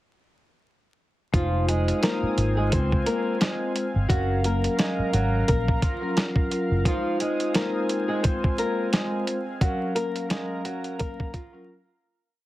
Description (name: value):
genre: hip hop, boom-bap hip-hop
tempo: 87 BPM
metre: 4/4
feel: swing 57% on 16ths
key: unclear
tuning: A4 = 439 Hz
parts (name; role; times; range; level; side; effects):
- flamenco guitar; melody; 1.3-11.6 s; F3 to C5; -29 LUFS; left 1 dB; high-pass filter, low-pass filter, plate reverb, tape echo
- vibraphone with soft mallets; accompaniment; 1.3-11.7 s; Gb3 to F5; -28 LUFS; left 1 dB; cassette tape, high-pass filter, low-pass filter
- lush unison pad; sustained chords; 1.6-12.4 s; C4 to Eb6; -36 LUFS; right 1 dB; chorus, high-pass filter, low-pass filter, plate reverb
- vintage muted fingered electric bass; bass; 1.3-6.8 s; F1 to Db2; -24 LUFS; equal; none
- dusty soul sampler-style drum kit; drums; 1.3-11.5 s; hi-hat, kick drum, snare drum; -24 LUFS; equal; none
room: light reverb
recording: heavily compressed radio sound, multiband compression, vinyl crackle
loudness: -22 LUFS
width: side -16 dB against mid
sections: 1.3-12.4 hook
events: break 6.9-12.4; fade-out 9.6-12.4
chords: 1.3 Fm7; 2.7 Dbmaj7; 4.1 Gbmaj7; 6.9 Fm7; 8.2 Ab69; 9.6 Gbmaj7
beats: | 1.33 2.02 2.71 3.40 | 4.09 4.78 5.47 6.16 | 6.85 7.54 8.23 8.92 | 9.61 10.30 10.99 11.68